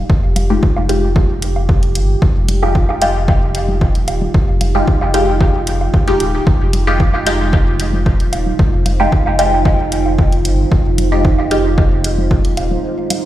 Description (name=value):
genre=dub techno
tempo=113 BPM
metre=4/4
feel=straight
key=F minor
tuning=A4 = 440 Hz
part: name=deep dark ambient pad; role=sustained chords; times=0.0-13.3 s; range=Ab3 to C5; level=-22 LUFS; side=right 3 dB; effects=chorus, built-in reverb, sidechain pumping
part: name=warm sub bass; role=bass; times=0.0-12.8 s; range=Eb1 to G1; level=-18 LUFS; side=equal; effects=tube saturation, sidechain pumping
part: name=electronic kick drum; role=drums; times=0.1-12.4 s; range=none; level=-14 LUFS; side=equal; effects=overdrive
part: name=electronic hi-hat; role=drums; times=0.4-13.2 s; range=none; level=-24 LUFS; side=equal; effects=overdrive
part: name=congas and woodblock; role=percussion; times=0.4-13.2 s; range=none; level=-26 LUFS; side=equal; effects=sidechain pumping on perc, dub echo
part: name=filtered dub chord stab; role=stabs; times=0.5-11.6 s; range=Ab3 to G4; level=-18 LUFS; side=left 1 dB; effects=phaser, sidechain pumping, dub echo
room=light reverb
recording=played on a big sound system in a bare room, stone room reverb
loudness=-12 LUFS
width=side -14 dB against mid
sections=0.0-13.3 A section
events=break 12.8-13.3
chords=0.0 Fm9